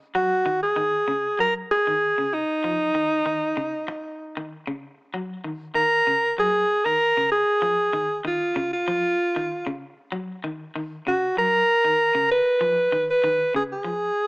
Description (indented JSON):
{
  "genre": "afrobeat",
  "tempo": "96 BPM",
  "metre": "4/4",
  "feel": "swing 53% on 16ths",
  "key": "Eb minor",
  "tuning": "A4 = 440 Hz",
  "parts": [
    { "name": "electric guitar at the edge of break-up", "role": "arpeggios", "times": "0.1-14.1 s", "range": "Db3 to Gb3", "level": "-32 LUFS", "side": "left 1 dB", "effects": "tremolo" },
    { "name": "clear alto saxophone", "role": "melody", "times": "0.2-14.3 s", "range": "Eb4 to Cb5", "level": "-20 LUFS", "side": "equal", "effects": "none" }
  ],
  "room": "moderate spring reverb, RT60 1.7 s, small room reverb",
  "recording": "small speaker sound",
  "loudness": "-20 LUFS",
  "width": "side -28 dB against mid",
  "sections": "0.0-5.1 A section; 5.1-14.3 B section",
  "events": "none",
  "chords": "0.1 Ebm7; 2.6 Dbadd9; 5.1 Ebm7; 7.6 Dbadd9; 10.1 Ebm7; 12.6 Dbadd9",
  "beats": "| 0.15 0.77 1.40 2.02 | 2.65 3.27 3.89 4.52 | 5.14 5.76 6.39 7.01 | 7.63 8.26 8.88 9.50 | 10.12 10.75 11.37 11.99 | 12.61 13.23 13.86"
}